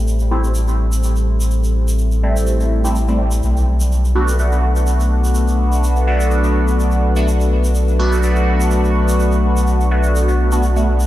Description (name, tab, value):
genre	dub techno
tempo	125 BPM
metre	4/4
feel	swing 54% on 16ths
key	unclear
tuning	A4 = 440 Hz
part	deep dark ambient pad	sustained chords	0.0-11.1 s	F#4 to E5	-24 LUFS	left 2 dB	chorus, built-in reverb
part	pure sine sub bass	bass	0.0-11.1 s	A1 to B1	-15 LUFS	equal	none
part	tube shaker	percussion	0.1-11.1 s	none	-32 LUFS	right 2 dB	none
part	resonant sweep polysynth	stabs	0.3-10.9 s	G3 to F#4	-20 LUFS	right 1 dB	chorus, phaser, cassette tape, dub echo
room	light reverb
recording	played on a big sound system in a bare room, large studio reverb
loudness	-14 LUFS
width	side -14 dB against mid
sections	0.0-11.1 A section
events	none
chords	0.0 Am7; 3.4 Bm7